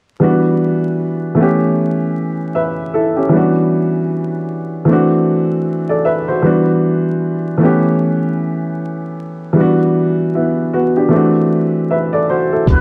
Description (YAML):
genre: lo-fi hip hop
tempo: 77 BPM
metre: 4/4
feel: swing 58% on 16ths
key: E minor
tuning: A4 = 440 Hz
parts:
  - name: dark upright piano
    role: accompaniment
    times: 0.2-12.8 s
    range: E3 to E5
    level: -15 LUFS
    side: equal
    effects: none
  - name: trumpet with plunger mute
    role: melody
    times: 12.7-12.8 s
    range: B4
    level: -21 LUFS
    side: equal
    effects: none
  - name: deep dub fingered electric bass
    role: bass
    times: 12.7-12.8 s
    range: E1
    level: -18 LUFS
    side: equal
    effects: none
  - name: lo-fi sampler-style drum kit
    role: drums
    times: 12.7-12.8 s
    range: hi-hat, kick drum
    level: -13 LUFS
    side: equal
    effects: none
room: moderate studio reverb, RT60 0.5 s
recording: dark, warm production, vinyl crackle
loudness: -15 LUFS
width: mono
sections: 0.2-12.7 A section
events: none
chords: 0.2 Em9; 1.4 A7; 3.3 Em9; 4.9 D9; 6.4 Em9; 7.6 A7; 9.6 Em9; 11.1 D9